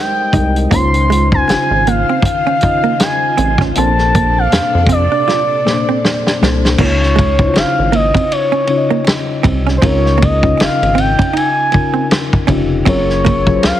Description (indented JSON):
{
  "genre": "R&B, neo-soul",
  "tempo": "79 BPM",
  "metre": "4/4",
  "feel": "swing 59% on 16ths",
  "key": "unclear",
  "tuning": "A4 = 440 Hz",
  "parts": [
    { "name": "gliding portamento lead", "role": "melody", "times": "0.0-13.8 s", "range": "C5 to C6", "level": "-16 LUFS", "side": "equal", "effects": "chorus" },
    { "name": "mellow reed electric piano", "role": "accompaniment", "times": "0.0-13.8 s", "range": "Bb2 to Eb5", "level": "-18 LUFS", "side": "left 4 dB", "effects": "none" },
    { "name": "hollow-body jazz guitar", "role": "second line", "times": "0.3-13.7 s", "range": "Ab3 to F4", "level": "-20 LUFS", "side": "right 8 dB", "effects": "none" },
    { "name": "rubbery square bass", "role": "bass", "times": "0.3-13.7 s", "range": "F1 to F2", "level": "-16 LUFS", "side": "equal", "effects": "none" },
    { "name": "warm soul drum kit", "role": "drums", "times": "0.3-13.8 s", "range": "crash cymbal, hi-hat, kick drum, ride cymbal, snare drum", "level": "-16 LUFS", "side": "equal", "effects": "none" },
    { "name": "string machine, violins", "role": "sustained chords", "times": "0.7-6.8 s", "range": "C3 to C5", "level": "-25 LUFS", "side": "equal", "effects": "ensemble chorus" }
  ],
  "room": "light reverb, small room ambience",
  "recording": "heavily compressed radio sound",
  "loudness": "-11 LUFS",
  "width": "side -12 dB against mid",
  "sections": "0.0-6.8 A section; 6.8-13.8 B section",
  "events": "drum fill 5.3-6.8",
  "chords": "0.0 Abmaj9; 0.7 Dbmaj9; 3.7 Bbmaj9; 6.8 Dbmaj9; 12.9 Gbmaj9"
}